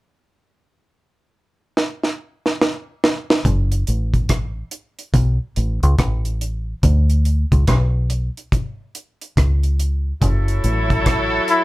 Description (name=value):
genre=roots reggae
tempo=71 BPM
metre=4/4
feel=swing 63% on 16ths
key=unclear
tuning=A4 = 441 Hz
part: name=deep reggae drum kit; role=drums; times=1.8-11.6 s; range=hi-hat, kick drum, rim click, snare drum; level=-19 LUFS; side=equal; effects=none
part: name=deep dub fingered electric bass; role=bass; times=3.5-11.4 s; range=F#1 to D2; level=-17 LUFS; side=equal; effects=none
part: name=clear horn section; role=second line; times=10.2-11.6 s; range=F#3 to A4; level=-20 LUFS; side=equal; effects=none
part: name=clear flugelhorn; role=melody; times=11.5-11.6 s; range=E4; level=-14 LUFS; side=left 2 dB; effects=none
room=light reverb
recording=band playing live in one room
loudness=-17 LUFS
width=side -18 dB against mid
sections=0.1-3.5 A section; 3.5-10.2 B section; 10.2-11.6 C section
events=drum fill 1.8-3.5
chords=0.1 N.C.; 6.8 Bmadd9; 10.2 F#m7